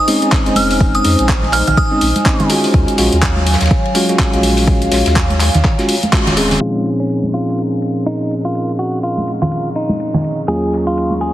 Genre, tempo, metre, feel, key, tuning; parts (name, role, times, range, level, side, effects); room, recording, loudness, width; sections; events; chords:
deep house; 124 BPM; 4/4; swing 59% on 16ths; Bb minor; A4 = 439 Hz
glassy synth bell; melody; 0.0-2.5 s; Eb6 to F6; -18 LUFS; right 1 dB; chorus, ping-pong delay
dark analog pad; sustained chords; 0.0-11.3 s; Gb3 to Db6; -22 LUFS; equal; chorus, sidechain pumping
bell-like tine electric piano; stabs; 0.1-11.3 s; Eb2 to Ab4; -17 LUFS; equal; sidechain pumping, low-pass filter, ping-pong delay
deep house drum kit; drums; 0.1-6.7 s; crash cymbal, handclaps, hi-hat; -19 LUFS; equal; low-pass filter on hats, low-pass filter on snare, low-pass filter on cymbals, low-pass filter on room
modern studio drum kit; drums; 0.1-11.3 s; ride cymbal, snare drum; -29 LUFS; left 3 dB; sidechain pumping on cymbals, high-pass filter on cymbals, low-pass filter on cymbals, high-pass filter on snare, low-pass filter on snare, high-pass filter on room, low-pass filter on room
electronic kick drum; drums; 0.3-6.2 s; -15 LUFS; equal
warm sub bass; bass; 0.5-6.6 s; Eb1 to F2; -17 LUFS; equal; sidechain pumping
congas; percussion; 0.6-11.2 s; -21 LUFS; equal
direct-recorded clean electric guitar; melody; 6.6-11.3 s; Db4 to Ab4; -21 LUFS; equal; ping-pong delay
moderate lush hall reverb, RT60 2.5 s; heavily compressed radio sound, multiband compression, vinyl crackle, low-pass filter; -12 LUFS; side -13 dB against mid
0.0-6.6 A section; 6.6-11.3 B section
band accent 6.1; filter sweep on tine electric piano 6.6-11.3; filter sweep 6.6-11.3
0.0 Bbm11; 2.7 Ebm11; 6.6 Bbm11; 10.5 Ebm11